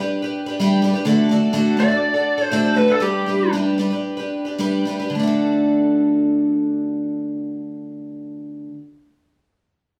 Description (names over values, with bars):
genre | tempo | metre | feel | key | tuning
rock | 106-125 BPM | 4/4 | straight | D major | A4 = 440 Hz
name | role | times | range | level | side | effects
picked twelve-string acoustic guitar | accompaniment | 0.0-8.9 s | D3 to B4 | -21 LUFS | equal | none
lead guitar through a small cranked amp | melody | 1.8-3.5 s | G4 to D5 | -21 LUFS | equal | overdrive
room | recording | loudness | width
wet large studio reverb, RT60 0.9 s | band playing live in one room | -19 LUFS | mono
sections
0.0-5.1 A section; 5.1-9.6 B section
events
lead electric guitar solo 0.0-5.1; slowing down 1.1-5.1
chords
0.0 G; 1.1 D; 3.0 G; 5.1 D